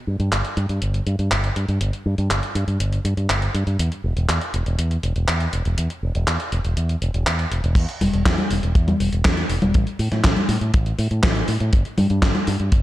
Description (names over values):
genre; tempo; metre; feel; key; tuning
italo disco; 121 BPM; 4/4; straight; unclear; A4 = 439 Hz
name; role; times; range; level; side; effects
fingered electric bass with an envelope filter; bass; 0.1-12.8 s; E1 to A2; -21 LUFS; equal; digital delay
gated 80s digital drum machine; drums; 0.2-12.8 s; congas, crash cymbal, handclaps, hi-hat, snare drum; -23 LUFS; equal; gated reverb, gated reverb snare, overdrive
kick drum; drums; 7.8-12.8 s; none; -17 LUFS; equal; none
room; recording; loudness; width
little or no reverb; dark, warm production; -18 LUFS; side -15 dB against mid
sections
0.0-7.8 A section; 7.8-12.8 B section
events
none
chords
none